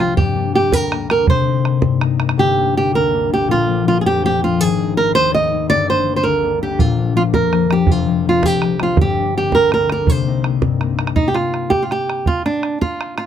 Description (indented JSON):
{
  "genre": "celtic folk, Celtic jig",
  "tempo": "109 BPM (dotted quarters)",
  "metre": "6/8",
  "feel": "straight",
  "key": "unclear",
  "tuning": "A4 = 439 Hz",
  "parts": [
    { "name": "flamenco guitar", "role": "melody", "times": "0.0-13.2 s", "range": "D4 to Eb5", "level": "-17 LUFS", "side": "right 3 dB", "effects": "none" },
    { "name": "concert harp", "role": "accompaniment", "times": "0.0-13.3 s", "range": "F1 to Eb4", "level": "-18 LUFS", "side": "left 7 dB", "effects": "none" },
    { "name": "bodhran", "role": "percussion", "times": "0.0-2.4, 6.8-13.3 s", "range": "none", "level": "-18 LUFS", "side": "right 3 dB", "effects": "none" }
  ],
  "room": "light reverb",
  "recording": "close, detailed microphones",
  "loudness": "-14 LUFS",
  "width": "side -9 dB against mid",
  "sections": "0.0-2.4 A section; 2.4-11.2 A section; 11.2-13.3 B section",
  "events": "none",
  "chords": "0.2 Gm; 1.3 Cm7; 3.5 Bb; 4.6 Ab; 5.7 Gm; 6.8 Bb; 7.9 Fm; 9.0 Gm; 10.1 Cm7; 11.2 N.C."
}